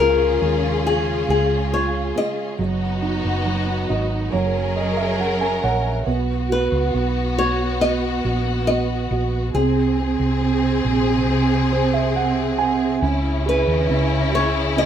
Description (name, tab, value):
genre	pop ballad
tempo	69 BPM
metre	4/4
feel	straight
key	B major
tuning	A4 = 440 Hz
part	flamenco guitar	melody	0.0-14.9 s	G#4 to D#5	-22 LUFS	left 3 dB	plate reverb
part	felt-muted upright piano	accompaniment	0.0-14.9 s	C#3 to G#5	-23 LUFS	right 7 dB	none
part	warm studio string section	sustained chords	0.0-14.9 s	B#2 to A#4	-24 LUFS	left 3 dB	none
part	hollow-body short-scale fingered electric bass	bass	0.0-14.9 s	F#1 to D#2	-23 LUFS	equal	none
room	moderate studio reverb, RT60 0.6 s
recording	rough home demo mix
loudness	-18 LUFS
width	side -9 dB against mid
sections	0.0-6.1 A section; 6.1-14.9 B section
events	felt piano fill 3.5-6.1, 11.3-13.0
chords	0.0 C#; 2.6 B/F#; 4.3 F#add9; 6.1 B; 9.5 G#; 13.0 C#m